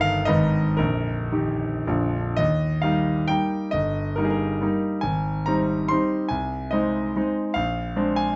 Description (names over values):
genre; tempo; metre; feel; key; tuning
classical, romantic triple-time dance for piano with dotted rhythms; 106-154 BPM; 3/4; rubato; Eb major; A4 = 440 Hz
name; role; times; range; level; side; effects
clear concert grand piano; solo; 0.0-8.4 s; Bb0 to C6; -24 LUFS; equal; none
room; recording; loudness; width
moderate studio reverb, RT60 0.9 s; dark, warm production, nothing above 7.9 kHz; -24 LUFS; mono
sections
0.0-2.4 A section; 2.4-8.4 B section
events
none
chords
0.3 Abm; 0.8 Eb/Bb; 1.9 Bb; 2.4 Eb; 3.7 Eb/G; 5.0 Abmaj7; 6.3 Ab/C; 7.6 Bb9